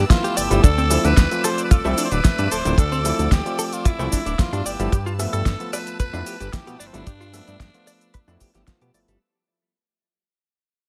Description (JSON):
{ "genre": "nu-disco, nu disco", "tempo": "112 BPM", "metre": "4/4", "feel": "straight", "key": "unclear", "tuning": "A4 = 441 Hz", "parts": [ { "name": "clear symphonic string section", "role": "sustained chords", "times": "0.0-9.2 s", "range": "B4 to E6", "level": "-36 LUFS", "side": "equal", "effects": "sidechain pumping" }, { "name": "direct-recorded clean electric guitar", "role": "riff", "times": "0.0-9.2 s", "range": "D3 to D5", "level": "-31 LUFS", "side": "equal", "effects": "lush chorus" }, { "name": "chorused synth bass", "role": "bass", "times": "0.0-9.2 s", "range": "D1 to B2", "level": "-25 LUFS", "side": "equal", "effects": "none" }, { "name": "growling tenor saxophone", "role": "melody", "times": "0.1-8.7 s", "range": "C4 to C5", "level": "-29 LUFS", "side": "equal", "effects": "vintage 12-bit sampler grit, delay" }, { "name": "overdriven reed electric piano", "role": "accompaniment", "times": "0.1-9.2 s", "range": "F3 to E5", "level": "-30 LUFS", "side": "equal", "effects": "sidechain pumping" }, { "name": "kick drum", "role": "drums", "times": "0.1-8.8 s", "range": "none", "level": "-18 LUFS", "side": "equal", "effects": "none" }, { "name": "pop drum kit", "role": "drums", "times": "0.1-9.2 s", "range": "cabasa, hi-hat, rim click, snare drum", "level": "-29 LUFS", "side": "equal", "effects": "overdrive" } ], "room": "small room reverb", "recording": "none", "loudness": "-20 LUFS", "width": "mono", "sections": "0.0-9.2 A section", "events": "drop 0.0-9.2; fade-out 0.6-9.2", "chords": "0.0 G13; 0.6 Dm9; 4.7 G13" }